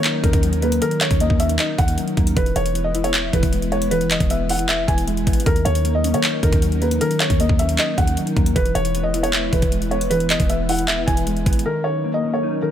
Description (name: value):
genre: hip hop, trap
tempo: 155 BPM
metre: 4/4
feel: half-time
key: Eb phrygian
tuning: A4 = 441 Hz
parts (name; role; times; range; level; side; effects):
- felt-muted upright piano; melody; 0.0-12.7 s; Bb4 to G#5; -23 LUFS; equal; none
- mellow electric guitar; accompaniment; 0.0-12.7 s; Eb3 to E5; -23 LUFS; left 2 dB; ensemble chorus
- airy breathy pad; sustained chords; 0.0-12.7 s; Gb3 to B4; -30 LUFS; equal; chorus
- warm 808-style bass; bass; 0.0-11.6 s; Eb1 to Eb3; -23 LUFS; equal; none
- trap drum kit; drums; 0.0-11.7 s; handclaps, hi-hat, kick drum; -20 LUFS; equal; none
room: little or no reverb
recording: none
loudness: -17 LUFS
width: side -10 dB against mid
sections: 0.0-11.7 A section; 11.7-12.7 B section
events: none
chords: 0.0 Ebm7; 2.4 E; 5.5 Ebm7; 8.6 E; 11.7 Ebm7